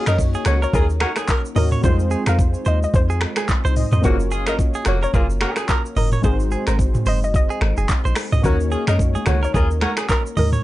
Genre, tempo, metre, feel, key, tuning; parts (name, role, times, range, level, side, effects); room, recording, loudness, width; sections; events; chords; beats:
afrobeats; 109 BPM; 4/4; swing 58% on 16ths; Eb dorian; A4 = 438 Hz
mellow horn section; second line; 0.0-9.9 s; Db3 to Bb4; -27 LUFS; left 2 dB
warm analog keys; accompaniment; 0.0-10.6 s; G3 to Eb5; -28 LUFS; left 2 dB; chorus
direct-recorded clean electric guitar; riff; 0.0-10.6 s; Ab4 to Eb5; -28 LUFS; right 5 dB; tape echo
soft round pluck; melody; 0.1-10.5 s; Ab4 to F5; -27 LUFS; equal; chorus, tape echo
deep log drum bass; bass; 0.1-10.6 s; F1 to Gb2; -19 LUFS; equal
afro-pop drum kit; drums; 0.1-10.6 s; finger snaps, handclaps, hi-hat, kick drum, rim click, shaker, toms; -20 LUFS; equal; overdrive, vintage 12-bit sampler grit
congas; percussion; 8.4-10.5 s; -28 LUFS; right 2 dB
light reverb; dark, warm production, nothing above 10.4 kHz; -16 LUFS; side -16 dB against mid
0.0-10.6 A section
0.0 Ebm7; 1.8 Fm7; 4.0 Gbmaj7; 6.2 Ab7; 8.4 Ebm7
0.19 0.74 1.29 | 1.84 2.39 2.94 3.49 | 4.04 4.59 5.14 5.69 | 6.24 6.79 7.34 7.89 | 8.44 8.99 9.54 10.09